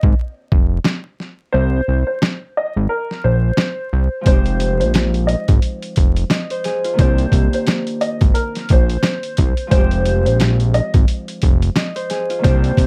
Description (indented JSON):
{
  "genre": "hip hop, boom-bap hip-hop",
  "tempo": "88 BPM",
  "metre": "4/4",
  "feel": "swing 59% on 16ths",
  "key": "F minor",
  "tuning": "A4 = 439 Hz",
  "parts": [
    { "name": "fat analog bass", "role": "bass", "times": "0.0-12.9 s", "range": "F1 to C2", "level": "-19 LUFS", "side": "equal", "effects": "none" },
    { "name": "boom bap sampler-style drum kit", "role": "drums", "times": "0.0-12.9 s", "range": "hi-hat, kick drum, snare drum", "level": "-18 LUFS", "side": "equal", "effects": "none" },
    { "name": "warm upright piano", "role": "melody", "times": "1.5-12.9 s", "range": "Bb4 to Eb5", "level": "-24 LUFS", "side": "equal", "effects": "high-pass filter, low-pass filter, slapback echo, plate reverb" },
    { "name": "Celtic harp", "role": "accompaniment", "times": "4.2-12.9 s", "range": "Eb3 to Eb5", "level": "-26 LUFS", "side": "equal", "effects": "cassette tape, high-pass filter, low-pass filter" }
  ],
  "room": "light reverb",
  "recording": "dark, warm production, vinyl crackle",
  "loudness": "-17 LUFS",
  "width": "mono",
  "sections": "0.0-12.9 A section",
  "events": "break 0.0-4.3; kick muted 1.5-4.3",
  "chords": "0.0 Fm; 1.5 Abadd9 (rootless); 4.3 Fm7; 7.0 Cm7; 9.7 Fm7"
}